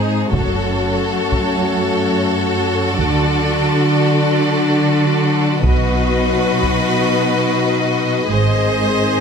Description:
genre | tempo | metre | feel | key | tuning
cinematic, epic orchestral film score | 90 BPM | 4/4 | straight | F# minor | A4 = 442 Hz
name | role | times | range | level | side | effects
rich symphonic violin section | melody | 0.0-9.2 s | B#4 to D#5 | -24 LUFS | left 3 dB | none
bright symphonic violin section | second line | 0.0-9.2 s | G#4 to B#4 | -21 LUFS | left 1 dB | none
rich symphonic viola section | accompaniment | 0.0-9.2 s | D#4 to G#4 | -22 LUFS | equal | none
mellow French horn section | sustained chords | 0.0-9.2 s | D#3 to D#4 | -22 LUFS | left 6 dB | none
rich symphonic cello section | bass | 0.0-9.2 s | F#2 to D3 | -19 LUFS | right 3 dB | none
rich symphonic double bass section | bass | 0.3-8.9 s | F#1 to D2 | -21 LUFS | right 2 dB | none
taiko ensemble | drums | 0.3-1.6, 5.6-6.9 s | none | -20 LUFS | equal | none
room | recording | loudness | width
light reverb | none | -14 LUFS | side -6 dB against mid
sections
0.0-9.2 A section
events
build-up 0.0-9.2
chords
0.3 F#m; 3.0 D; 5.6 B; 8.3 G#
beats
| 0.34 1.00 1.66 2.32 | 2.98 3.65 4.30 4.97 | 5.63 6.30 6.96 7.63 | 8.29 8.96

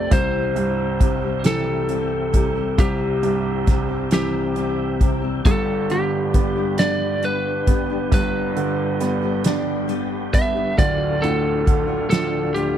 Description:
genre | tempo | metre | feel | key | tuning
six-eight pop ballad | 45 BPM (dotted quarters) | 6/8 | straight | C major | A4 = 442 Hz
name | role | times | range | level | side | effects
lightly driven lead guitar | melody | 0.0-12.8 s | G4 to E5 | -24 LUFS | left 1 dB | none
bright upright piano | accompaniment | 0.0-12.8 s | D1 to D4 | -25 LUFS | right 8 dB | none
tonewheel organ | sustained chords | 0.0-12.8 s | C2 to G4 | -27 LUFS | left 1 dB | chorus vibrato, slow rotary speaker
fingerpicked steel-string acoustic guitar | arpeggios | 0.0-12.8 s | G2 to G4 | -27 LUFS | left 16 dB | none
soft-mallet drum kit | drums | 0.1-12.8 s | hi-hat, kick drum, snare drum | -20 LUFS | equal | none
room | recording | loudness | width
little or no reverb | dry, close 1970s-style studio recording | -18 LUFS | side -10 dB against mid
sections
0.0-12.8 A section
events
none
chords
0.1 C; 5.5 G; 10.8 Dm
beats
| 0.12 1.45 | 2.79 4.12 | 5.45 6.79 | 8.12 9.45 | 10.78 12.11

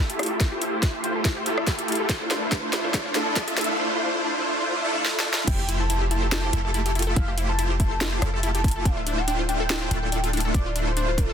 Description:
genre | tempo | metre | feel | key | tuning
future bass | 142 BPM | 4/4 | swing 54% on 16ths, half-time | F major | A4 = 440 Hz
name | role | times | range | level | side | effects
wide unison pluck | arpeggios | 0.0-11.3 s | D4 to A4 | -34 LUFS | left 3 dB | sidechain pumping, ping-pong delay
supersaw chords | riff | 0.0-11.3 s | A3 to C5 | -26 LUFS | equal | ensemble chorus, sidechain pumping, low-pass filter, ping-pong delay
riser and impact | sound effects | 0.3-7.2 s | none | -36 LUFS | equal | none
trap drum kit | drums | 0.1-11.3 s | crash cymbal, hi-hat, rim click, snare drum | -27 LUFS | equal | high-pass filter on hats, high-pass filter on snare, high-pass filter on cymbals
electronic kick drum | drums | 0.4-11.3 s | none | -23 LUFS | equal | none
warm velvety synth lead | melody | 5.5-11.3 s | A4 to A5 | -31 LUFS | left 1 dB | chorus, sidechain pumping, ping-pong delay
warm 808-style bass | bass | 5.5-11.3 s | D1 to F1 | -26 LUFS | equal | tube saturation, sidechain pumping
room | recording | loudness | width
light reverb | dense, heavily limited modern master, high-pass filter | -22 LUFS | side -8 dB against mid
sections
0.0-5.5 A section; 5.5-11.3 B section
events
build-up 0.0-5.5; drum fill 0.0-3.8, 5.1-5.5; filter sweep on supersaw synth 0.0-5.5; filter sweep 0.0-5.5; riser 0.3-3.8; drop 5.5-11.3; impact 5.5-7.2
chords
0.0 Fmaj9; 2.1 Dm9; 5.5 Fmaj9; 8.9 Dm9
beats
| 0.40 0.83 1.25 1.67 | 2.09 2.52 2.94 3.36 | 3.78 4.21 4.63 5.05 | 5.47 5.90 6.32 6.74 | 7.17 7.59 8.01 8.43 | 8.86 9.28 9.70 10.12 | 10.54 10.97

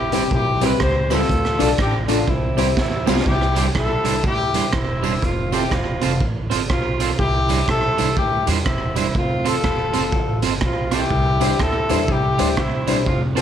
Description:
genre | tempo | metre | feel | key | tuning
ska | 122 BPM | 4/4 | swing 62% on 8ths | C major | A4 = 440 Hz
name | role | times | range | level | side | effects
warm horn section | melody | 0.0-13.4 s | C4 to C5 | -22 LUFS | left 2 dB | none
upright bass | bass | 0.0-13.4 s | E1 to E2 | -24 LUFS | equal | none
electric guitar at the edge of break-up | accompaniment | 0.1-13.4 s | G3 to C5 | -26 LUFS | right 10 dB | none
dark upright piano | stabs | 0.1-3.2, 11.4-13.4 s | C4 to D5 | -24 LUFS | left 9 dB | none
raw garage drum kit | drums | 0.1-13.4 s | hi-hat, kick drum, rim click, snare drum | -22 LUFS | right 2 dB | slapback echo
tambourine | percussion | 0.1-13.4 s | none | -37 LUFS | left 11 dB | slapback echo
room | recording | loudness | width
moderate echo chamber reverb, RT60 1.7 s, studio ambience | 1960s-style stereo with parts hard left and right | -17 LUFS | side -9 dB against mid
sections
0.0-3.3 A section; 3.3-13.4 B section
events
drum fill 2.8-3.3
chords
0.0 C; 1.3 Dm; 2.3 C; 3.3 Cadd9; 5.2 F; 7.2 Cadd9; 9.1 F; 11.1 Cadd9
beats
0.31 0.80 | 1.29 1.78 2.28 2.77 | 3.26 3.75 4.24 4.73 | 5.22 5.71 6.20 6.70 | 7.19 7.68 8.17 8.66 | 9.15 9.64 10.13 10.62 | 11.11 11.59 12.08 12.57 | 13.06

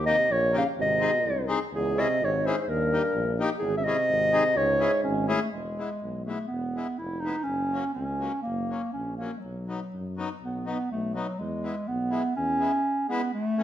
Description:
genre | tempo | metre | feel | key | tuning
alpine folk, alpine dance band | 124 BPM | 2/4 | straight | C# harmonic minor, E major from 5.5 s | A4 = 439 Hz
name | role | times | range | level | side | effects
mellow clarinet | melody | 0.0-13.6 s | F#3 to E#5 | -26 LUFS | equal | none
mellow euphonium | second line | 0.0-5.3 s | E2 to C#3 | -32 LUFS | right 5 dB | none
mellow tuba | bass | 0.0-12.7 s | E1 to F#2 | -34 LUFS | equal | none
accordion | accompaniment | 0.1-13.6 s | E3 to G#4 | -32 LUFS | left 4 dB | none
room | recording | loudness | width
moderate recital hall reverb, RT60 1.4 s | minimal, uncompressed stereo recording | -25 LUFS | side -11 dB against mid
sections
0.0-5.5 A section; 5.5-13.3 B section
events
break 12.9-13.3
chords
0.0 D#; 0.8 G#; 1.7 C#m; 2.7 D#; 3.6 C#m/G#; 4.1 G#; 4.6 C#m; 5.5 E; 7.5 F#; 9.4 B; 11.4 E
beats
0.29 | 0.76 1.24 | 1.72 2.20 | 2.67 3.14 | 3.61 4.09 | 4.56 5.04 | 5.53 6.02 | 6.51 7.00 | 7.49 7.98 | 8.46 8.95 | 9.45 9.94 | 10.43 10.92 | 11.40 11.88 | 12.37 12.86 | 13.34

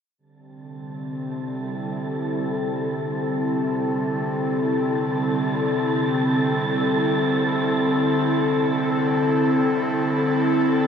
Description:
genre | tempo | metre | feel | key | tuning
ambient | free time | none | none | C major | A4 = 438 Hz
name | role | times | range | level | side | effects
airy breathy pad | sustained chords | 0.6-10.9 s | D3 to A4 | -21 LUFS | equal | chorus
bowed-like drone | drone | 0.7-10.9 s | C3 to G3 | -32 LUFS | right 2 dB | built-in reverb
wind-like tuned noise texture | texture | 0.9-10.9 s | A4 to A5 | -28 LUFS | left 1 dB | built-in reverb
room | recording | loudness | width
wet plate reverb, RT60 2.8 s | none | -20 LUFS | side -7 dB against mid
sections
0.2-10.9 A section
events
fade-out on synth drone 0.2-10.9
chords
0.2 C69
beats
free time

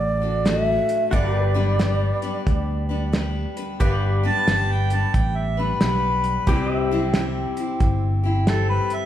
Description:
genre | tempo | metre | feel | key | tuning
honky-tonk and classic country | 90 BPM | 4/4 | swing 64% on 8ths | G major | A4 = 439 Hz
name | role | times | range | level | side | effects
bansuri | melody | 0.0-3.1 s | D5 to E5 | -24 LUFS | right 2 dB | none
picked steel-string acoustic guitar | accompaniment | 0.0-9.1 s | G2 to B4 | -27 LUFS | left 3 dB | none
pedal steel guitar | sustained chords | 0.0-9.1 s | C4 to E5 | -31 LUFS | left 1 dB | none
fingered electric bass | bass | 0.0-8.8 s | G1 to D2 | -24 LUFS | equal | none
cloth-damped thuddy drum kit | drums | 0.5-9.0 s | hi-hat, kick drum, snare drum | -23 LUFS | right 1 dB | none
mellow harmonica | second line | 4.3-9.1 s | A4 to A5 | -24 LUFS | equal | none
room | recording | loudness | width
wet recital hall reverb, RT60 1.5 s | heard from further back in the room | -19 LUFS | side -11 dB against mid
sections
0.0-3.8 A section; 3.8-9.1 B section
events
harmonica solo 3.8-9.1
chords
0.0 D; 1.1 G; 6.5 C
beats
0.46 | 1.13 1.80 2.47 3.13 | 3.80 4.47 5.14 5.81 | 6.47 7.14 7.81 8.47

